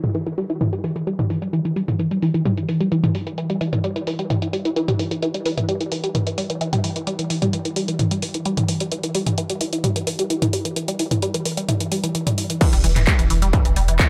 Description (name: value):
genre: driving peak-time techno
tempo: 130 BPM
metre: 4/4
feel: straight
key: E minor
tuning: A4 = 440 Hz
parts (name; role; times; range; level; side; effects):
- resonant blip pluck; riff; 0.0-14.1 s; E3 to G3; -25 LUFS; equal; phaser, vintage 12-bit sampler grit, sidechain pumping, tape echo
- punchy analog drum machine; drums; 0.0-14.1 s; crash cymbal, handclaps, hi-hat, toms; -26 LUFS; equal; low-pass filter on hats, low-pass filter on toms, low-pass filter on snare, low-pass filter on cymbals, low-pass filter on room
- electronic kick drum; drums; 12.6-14.1 s; none; -20 LUFS; equal; distortion, overdrive
- saturated sub bass; bass; 12.7-14.0 s; E1; -21 LUFS; equal; tube saturation, sidechain pumping, low-pass filter
room: light reverb, digital ambience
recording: none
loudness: -22 LUFS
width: mono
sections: 0.0-12.6 A section; 12.6-14.1 B section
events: filter sweep on drum 0.0-12.6; filter sweep on synth arpeggio sound 0.0-12.6; drop 12.6-14.1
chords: 0.0 Em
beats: 0.15 0.61 1.07 | 1.53 1.99 2.46 2.92 | 3.38 3.84 4.30 4.76 | 5.22 5.69 6.15 6.61 | 7.07 7.53 7.99 8.46 | 8.92 9.38 9.84 10.30 | 10.76 11.22 11.69 12.15 | 12.61 13.07 13.53 13.99